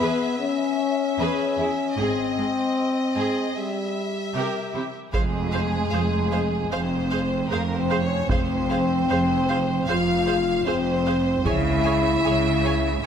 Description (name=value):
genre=cinematic, epic orchestral film score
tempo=76 BPM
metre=4/4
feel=straight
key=F harmonic minor from 5.1 s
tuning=A4 = 440 Hz
part: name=clear symphonic violin section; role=melody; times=0.0-13.1 s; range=Eb5 to Ab5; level=-33 LUFS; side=left 3 dB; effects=none
part: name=clear symphonic violin section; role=second line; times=0.0-13.1 s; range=C4 to F5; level=-30 LUFS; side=left 1 dB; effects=none
part: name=rich symphonic viola section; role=accompaniment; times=0.0-13.1 s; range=G4 to Db5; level=-31 LUFS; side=right 2 dB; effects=none
part: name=mellow French horn section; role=sustained chords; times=0.0-12.9 s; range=G3 to F4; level=-24 LUFS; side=left 3 dB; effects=none
part: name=rich symphonic cello section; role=bass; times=0.0-13.1 s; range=E2 to Db3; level=-28 LUFS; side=right 4 dB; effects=none
part: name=rich symphonic double bass section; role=bass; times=2.0-13.1 s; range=F1 to Db2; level=-28 LUFS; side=right 4 dB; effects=none
part: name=taiko ensemble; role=drums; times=5.1-12.2 s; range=none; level=-26 LUFS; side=right 1 dB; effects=none
room=moderate concert hall reverb, RT60 2.1 s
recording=none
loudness=-21 LUFS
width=side -8 dB against mid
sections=0.0-5.1 A section; 5.1-13.1 B section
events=none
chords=0.0 E; 2.0 Ab; 3.6 C7/G (rootless); 5.1 Fm; 11.5 Dbm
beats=0.40 1.19 | 1.98 2.77 3.56 4.35 | 5.14 5.93 6.72 7.51 | 8.30 9.09 9.88 10.67 | 11.46 12.24 13.03